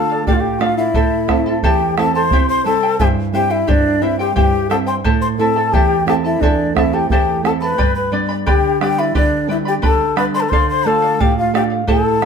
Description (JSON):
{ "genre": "andean folk, Andean ensemble", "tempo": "88 BPM", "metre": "2/4", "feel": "straight", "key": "unclear", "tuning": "A4 = 442 Hz", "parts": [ { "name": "mellow hollow large quena", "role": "melody", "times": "0.0-12.3 s", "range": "D5 to C6", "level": "-19 LUFS", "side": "left 2 dB", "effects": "none" }, { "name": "breathy large quena", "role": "second line", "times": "0.0-12.3 s", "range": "D4 to C5", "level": "-20 LUFS", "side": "left 5 dB", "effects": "none" }, { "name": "charango", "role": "accompaniment", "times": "0.0-12.3 s", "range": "E4 to B5", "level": "-22 LUFS", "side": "right 2 dB", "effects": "none" }, { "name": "nylon-string guitar", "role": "accompaniment", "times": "0.0-12.3 s", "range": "E2 to F4", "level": "-20 LUFS", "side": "right 5 dB", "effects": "none" }, { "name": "bombo", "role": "percussion", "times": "0.3-12.3 s", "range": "none", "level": "-19 LUFS", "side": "equal", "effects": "none" } ], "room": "wet studio reverb, RT60 0.9 s", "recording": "band playing live in one room", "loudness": "-13 LUFS", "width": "side -6 dB against mid", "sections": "0.0-2.3 A section; 2.3-12.3 A section", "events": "none", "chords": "0.0 Dm; 1.0 Am; 2.3 C; 5.0 Am; 7.8 G; 10.5 Dm", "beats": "0.27 | 0.95 1.63 | 2.32 3.00 | 3.68 4.37 | 5.05 5.73 | 6.42 7.10 | 7.78 8.46 | 9.15 9.83 | 10.51 11.20 | 11.88" }